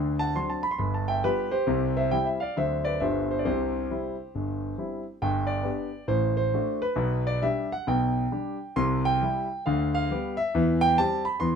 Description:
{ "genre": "jazz, stride piano", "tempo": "136 BPM", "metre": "4/4", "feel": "swing 64% on 8ths", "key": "C major, G major from 5.2 s", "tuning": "A4 = 441 Hz", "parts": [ { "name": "clear concert grand piano", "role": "solo", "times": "0.0-11.6 s", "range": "G1 to C6", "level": "-24 LUFS", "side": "equal", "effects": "none" } ], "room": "moderate studio reverb, RT60 0.7 s", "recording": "minimal, uncompressed stereo recording", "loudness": "-24 LUFS", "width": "side -6 dB against mid", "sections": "0.0-5.2 A section; 5.2-11.6 B section", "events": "none", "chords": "0.0 D7; 0.8 G7; 1.7 C; 2.6 D7; 3.0 G7; 3.5 C; 5.2 G; 6.1 D7/A; 7.0 G/B; 8.8 C; 9.6 G7/D; 10.5 C/E" }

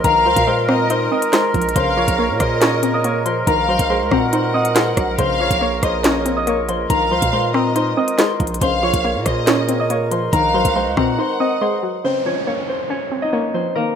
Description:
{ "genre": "hip hop, drill", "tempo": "140 BPM", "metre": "4/4", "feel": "half-time", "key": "Bb minor", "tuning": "A4 = 441 Hz", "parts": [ { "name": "concert harp", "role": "melody", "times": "0.0-14.0 s", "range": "Bb3 to Eb6", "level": "-20 LUFS", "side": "left 2 dB", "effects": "low-pass filter" }, { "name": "warm studio violin section", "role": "second line", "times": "0.0-12.0 s", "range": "Eb5 to Gb5", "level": "-24 LUFS", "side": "equal", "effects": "none" }, { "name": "warbly dusty pluck", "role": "accompaniment", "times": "0.0-14.0 s", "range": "Db3 to Eb4", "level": "-22 LUFS", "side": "left 1 dB", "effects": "chorus, low-pass filter" }, { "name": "warm woodwind section", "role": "sustained chords", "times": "0.0-12.0 s", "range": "Db3 to Bb4", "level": "-24 LUFS", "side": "right 3 dB", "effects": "none" }, { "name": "long sustained 808-style bass", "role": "bass", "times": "0.0-11.2 s", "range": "Bb1 to Bb2", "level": "-24 LUFS", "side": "right 1 dB", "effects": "none" }, { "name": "drill drum kit", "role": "drums", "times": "0.0-11.1 s", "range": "handclaps, hi-hat, kick drum, rim click, snare drum", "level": "-21 LUFS", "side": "right 1 dB", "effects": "none" }, { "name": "downlifter", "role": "sound effects", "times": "12.0-14.0 s", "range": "none", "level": "-30 LUFS", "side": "right 1 dB", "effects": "none" } ], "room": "moderate plate reverb, RT60 1.3 s, digital ambience", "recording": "rough home demo mix", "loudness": "-15 LUFS", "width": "side -8 dB against mid", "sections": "0.0-12.0 A section; 12.0-14.0 B section", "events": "break 11.2-12.0", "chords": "0.0 Fm7/Bb; 1.8 Bbmadd9; 3.5 Ab7/Bb; 5.2 Bbmadd9; 6.9 Fm7/Bb; 8.6 Bbmadd9; 10.3 Ab7/Bb; 12.0 Bbmadd9" }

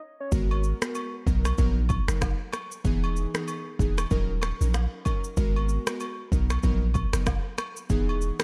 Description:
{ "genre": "afrobeats", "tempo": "95 BPM", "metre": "4/4", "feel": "swing 58% on 16ths", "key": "G# minor", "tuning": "A4 = 440 Hz", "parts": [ { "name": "glassy digital keys", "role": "accompaniment", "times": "0.3-8.4 s", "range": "E3 to A#4", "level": "-35 LUFS", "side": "equal", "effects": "chorus" }, { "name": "punchy sub bass", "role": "bass", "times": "0.3-8.3 s", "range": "D#1 to B1", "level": "-28 LUFS", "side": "equal", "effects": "none" }, { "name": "afro-pop drum kit", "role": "drums", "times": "0.3-8.4 s", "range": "finger snaps, kick drum, rim click, shaker", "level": "-31 LUFS", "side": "equal", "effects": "none" }, { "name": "agogo bells and woodblock", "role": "percussion", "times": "0.5-8.2 s", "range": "none", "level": "-40 LUFS", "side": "equal", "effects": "none" } ], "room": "digital ambience", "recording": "dark, warm production", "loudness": "-27 LUFS", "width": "mono", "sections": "0.0-8.4 A section", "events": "break 0.0-0.3", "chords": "0.3 G#m9; 1.3 Bmaj7; 2.8 Emaj7; 4.1 D#m7; 5.4 G#m9; 6.3 Bmaj7; 7.9 Emaj7" }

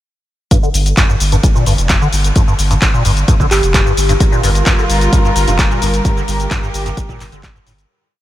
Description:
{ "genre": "acid house", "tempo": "130 BPM", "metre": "4/4", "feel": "straight", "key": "G minor", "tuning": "A4 = 442 Hz", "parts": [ { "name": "liquid acid bass", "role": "riff", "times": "0.5-7.7 s", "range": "G1 to D3", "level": "-19 LUFS", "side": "equal", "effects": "phaser, overdrive, analog chorus, sidechain pumping, diffuse ambient delay" }, { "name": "electronic kick drum", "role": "drums", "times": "0.5-7.5 s", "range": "none", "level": "-14 LUFS", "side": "equal", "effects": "none" }, { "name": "punchy analog drum machine", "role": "drums", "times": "0.5-7.9 s", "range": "handclaps, hi-hat, shaker", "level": "-18 LUFS", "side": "left 1 dB", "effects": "none" }, { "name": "saturated sub bass", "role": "bass", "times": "0.7-7.9 s", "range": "F1 to G1", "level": "-15 LUFS", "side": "equal", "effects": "sidechain pumping" }, { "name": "thumb-piano-like synth pluck", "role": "melody", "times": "3.5-3.9 s", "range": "G4", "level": "-21 LUFS", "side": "equal", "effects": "chorus, analog delay" }, { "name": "dark studio string section", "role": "sustained chords", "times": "4.2-7.9 s", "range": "G3 to Bb4", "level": "-19 LUFS", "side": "equal", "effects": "sidechain pumping" } ], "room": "light reverb, digital ambience", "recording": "none", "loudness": "-11 LUFS", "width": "side -14 dB against mid", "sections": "0.5-7.9 groove", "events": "filter sweep on acid bass 0.5-7.9; fade-out 5.4-7.9", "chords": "0.5 Gm7" }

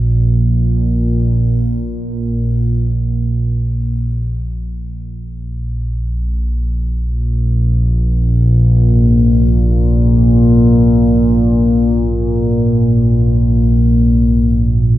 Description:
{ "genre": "dark ambient drone", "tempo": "free time", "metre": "none", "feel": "none", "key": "unclear", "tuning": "A4 = 441 Hz", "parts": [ { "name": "bronze singing bowl", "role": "arpeggios", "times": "0.0-15.0 s", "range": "Ab2 to F3", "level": "-29 LUFS", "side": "left 2 dB", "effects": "none" }, { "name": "analog drone", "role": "drone", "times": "0.0-15.0 s", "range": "Bb1 to Bb2", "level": "-12 LUFS", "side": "equal", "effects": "chorus" } ], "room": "wet cathedral reverb, RT60 7.1 s", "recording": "none", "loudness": "-11 LUFS", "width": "side -14 dB against mid", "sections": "0.0-15.0 A section", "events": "none", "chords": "0.0 Bb5" }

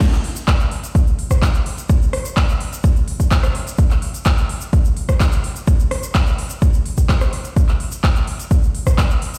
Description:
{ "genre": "house", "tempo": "127 BPM", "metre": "4/4", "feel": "straight", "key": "none", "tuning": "none", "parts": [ { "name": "big-room dance drum kit", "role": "drums", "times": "0.0-9.4 s", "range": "crash cymbal, handclaps, hi-hat, rim click", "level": "-27 LUFS", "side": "equal", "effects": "overdrive, sidechain pumping on hats, sidechain pumping on cymbals" }, { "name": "electronic kick drum", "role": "drums", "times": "0.0-9.1 s", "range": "none", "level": "-18 LUFS", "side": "equal", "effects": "overdrive" }, { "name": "tube shaker", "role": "percussion", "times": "0.0-9.4 s", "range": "none", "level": "-37 LUFS", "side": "equal", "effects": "none" } ], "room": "light reverb", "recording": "played on a big sound system in a bare room, stone room reverb", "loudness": "-18 LUFS", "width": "mono", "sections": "0.0-9.4 A section", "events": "drop 0.0-9.4", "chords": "none" }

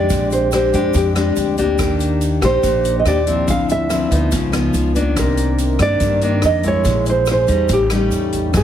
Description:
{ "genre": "bossa nova", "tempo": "142 BPM", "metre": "4/4", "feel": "straight", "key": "Eb major", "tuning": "A4 = 439 Hz", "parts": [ { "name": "nylon-string guitar", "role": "melody", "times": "0.0-8.6 s", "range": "G4 to F5", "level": "-19 LUFS", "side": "right 3 dB", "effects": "none" }, { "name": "nylon-string guitar", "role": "accompaniment", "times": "0.0-8.6 s", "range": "F2 to G4", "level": "-19 LUFS", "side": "left 4 dB", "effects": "none" }, { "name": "mellow French horn section", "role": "sustained chords", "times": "0.0-8.6 s", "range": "D3 to Bb4", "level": "-27 LUFS", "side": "right 1 dB", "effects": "none" }, { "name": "upright bass", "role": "bass", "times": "0.0-8.6 s", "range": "Ab1 to G2", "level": "-20 LUFS", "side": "equal", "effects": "none" }, { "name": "swinging big-band drum kit", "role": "drums", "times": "0.1-8.6 s", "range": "hi-hat, kick drum, rim click", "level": "-25 LUFS", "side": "equal", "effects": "none" }, { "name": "tube shaker", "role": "percussion", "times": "0.1-8.6 s", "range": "none", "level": "-36 LUFS", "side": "right 9 dB", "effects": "none" } ], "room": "light reverb", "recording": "heavily compressed radio sound, multiband compression", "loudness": "-14 LUFS", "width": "side -10 dB against mid", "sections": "0.0-8.6 A section", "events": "none", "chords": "0.1 Bb13; 1.8 Ebmaj7; 3.5 Dm9; 4.3 Db9; 5.2 Cm9; 6.9 Bbm7b5; 7.7 A7#11" }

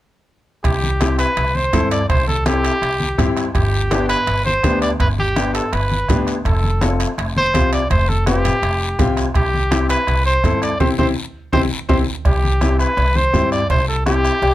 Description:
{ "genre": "latin, cumbia", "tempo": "166 BPM", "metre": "4/4", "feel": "straight", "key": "C major", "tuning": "A4 = 441 Hz", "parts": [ { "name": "clear trumpet", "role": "melody", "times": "0.6-14.5 s", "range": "G4 to D5", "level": "-20 LUFS", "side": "equal", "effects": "none" }, { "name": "upright bass", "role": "bass", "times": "0.6-14.5 s", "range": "F1 to G2", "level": "-20 LUFS", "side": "equal", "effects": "none" }, { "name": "bombo", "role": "percussion", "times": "0.6-14.5 s", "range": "none", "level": "-22 LUFS", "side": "right 1 dB", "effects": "none" }, { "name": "guiro", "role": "percussion", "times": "0.6-14.5 s", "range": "none", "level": "-32 LUFS", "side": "left 5 dB", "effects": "none" }, { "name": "timbales and cowbell", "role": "percussion", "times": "0.6-14.5 s", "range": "none", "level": "-29 LUFS", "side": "right 7 dB", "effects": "none" }, { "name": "congas", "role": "percussion", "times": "0.7-14.5 s", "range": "none", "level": "-25 LUFS", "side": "left 2 dB", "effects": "none" }, { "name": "clear upright piano", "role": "accompaniment", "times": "1.0-14.3 s", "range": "B3 to B4", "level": "-21 LUFS", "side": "left 4 dB", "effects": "none" }, { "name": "bright trombone", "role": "second line", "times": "14.4-14.5 s", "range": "G4", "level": "-16 LUFS", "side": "left 3 dB", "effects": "none" } ], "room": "little or no reverb", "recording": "close, detailed microphones", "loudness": "-15 LUFS", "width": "side -14 dB against mid", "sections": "0.6-12.3 A section; 12.3-14.5 A section", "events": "band accent 10.8-12.3; drum fill 11.3-12.3", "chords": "0.6 C; 3.5 G; 6.5 F; 9.4 C" }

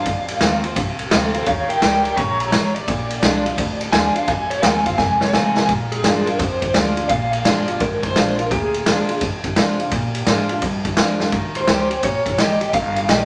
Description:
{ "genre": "rockabilly", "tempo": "170 BPM", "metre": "4/4", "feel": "swing 65% on 8ths", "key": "Bb mixolydian", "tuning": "A4 = 440 Hz", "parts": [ { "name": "electric guitar through a small old amp", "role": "melody", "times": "0.0-9.2, 11.6-13.2 s", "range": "Ab4 to Bb5", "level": "-23 LUFS", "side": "equal", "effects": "tremolo" }, { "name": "picked steel-string acoustic guitar", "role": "accompaniment", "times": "0.0-13.2 s", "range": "F2 to G4", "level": "-27 LUFS", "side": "equal", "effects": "none" }, { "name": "upright bass", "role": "bass", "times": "0.0-13.2 s", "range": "G1 to C3", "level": "-31 LUFS", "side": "equal", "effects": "none" }, { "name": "raw garage drum kit", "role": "drums", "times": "0.1-13.2 s", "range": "kick drum, ride cymbal, snare drum", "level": "-22 LUFS", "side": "equal", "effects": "none" } ], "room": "moderate large studio reverb, RT60 1.1 s", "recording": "none", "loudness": "-19 LUFS", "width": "mono", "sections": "0.0-5.7 A section; 5.7-13.2 B section", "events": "clean electric guitar solo 0.0-5.7; drum fill 5.0-5.7, 11.2", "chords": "0.1 F7; 1.5 Eb7; 2.9 Bb7; 4.3 F7; 5.7 Bb7; 11.3 Eb7" }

